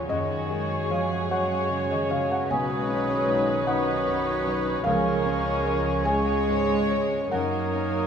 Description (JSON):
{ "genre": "cinematic", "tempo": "50 BPM (dotted quarters)", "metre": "6/8", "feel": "rubato", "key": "F# major", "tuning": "A4 = 439 Hz", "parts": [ { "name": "warm studio violin section", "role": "melody", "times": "0.0-8.1 s", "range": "F#4 to C#5", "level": "-34 LUFS", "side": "left 3 dB", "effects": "none" }, { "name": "felt-muted upright piano", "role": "accompaniment", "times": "0.0-8.1 s", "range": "B1 to G#5", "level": "-30 LUFS", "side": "equal", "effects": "none" }, { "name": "warm studio viola section", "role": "accompaniment", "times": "0.0-8.1 s", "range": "G#4 to C#5", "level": "-33 LUFS", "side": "right 4 dB", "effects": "none" }, { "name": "concert harp", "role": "arpeggios", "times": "0.0-8.1 s", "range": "F#2 to E#6", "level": "-36 LUFS", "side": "left 6 dB", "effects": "none" }, { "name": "warm studio cello section", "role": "bass", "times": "0.0-8.1 s", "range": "D#3 to G#3", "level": "-32 LUFS", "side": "right 2 dB", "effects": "none" }, { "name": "silver concert flute", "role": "second line", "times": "0.1-8.1 s", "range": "C#6 to D#6", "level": "-35 LUFS", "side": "left 1 dB", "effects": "none" }, { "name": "warm chamber violin section", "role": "second line", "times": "0.1-8.1 s", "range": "G#3 to G#4", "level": "-34 LUFS", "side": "left 2 dB", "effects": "none" }, { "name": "warm clarinet", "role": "second line", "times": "0.1-8.1 s", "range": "F#4 to A#4", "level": "-34 LUFS", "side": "equal", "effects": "none" }, { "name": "warm oboe", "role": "second line", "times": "0.1-8.1 s", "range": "C#5", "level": "-33 LUFS", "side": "right 1 dB", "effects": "none" }, { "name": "mellow French horn section", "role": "sustained chords", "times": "0.1-8.1 s", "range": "D#3 to D#4", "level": "-31 LUFS", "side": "left 2 dB", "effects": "none" }, { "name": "warm studio double bass section", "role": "bass", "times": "0.1-8.1 s", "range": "B1 to F#2", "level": "-33 LUFS", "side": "right 5 dB", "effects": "none" } ], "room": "wet scoring stage reverb, RT60 1.7 s", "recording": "none", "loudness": "-22 LUFS", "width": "side -7 dB against mid", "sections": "0.0-8.1 A section", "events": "none", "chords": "0.1 F#sus2; 2.5 Badd9; 4.9 C#; 7.3 F#6", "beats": "| 0.09 1.30 | 2.50 3.68 | 4.86 6.06 | 7.33" }